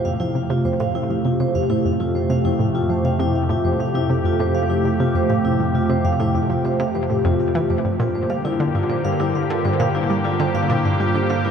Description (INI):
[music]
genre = ambient, sequencer-driven space music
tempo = 100 BPM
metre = 4/4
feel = straight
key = F major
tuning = A4 = 440 Hz
[part]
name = phased analog pad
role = sustained chords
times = 0.0-11.5 s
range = F2 to G4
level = -21 LUFS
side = equal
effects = phaser, chorus
[part]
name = vibraphone with soft mallets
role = arpeggios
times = 0.1-11.5 s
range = E4 to F5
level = -24 LUFS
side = moving between left 3 dB and right 4 dB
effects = auto-pan, ping-pong delay
[part]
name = analog pluck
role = riff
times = 0.1-11.5 s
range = F2 to G3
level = -23 LUFS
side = equal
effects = chorus, ping-pong delay
[sound]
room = wet cathedral reverb, RT60 5.8 s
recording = in a vast, echoing space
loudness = -18 LUFS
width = side -7 dB against mid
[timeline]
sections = 0.0-11.5 A section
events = filter sweep on synth arpeggio sound 0.0-11.5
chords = 0.0 Fadd9; 7.9 Gm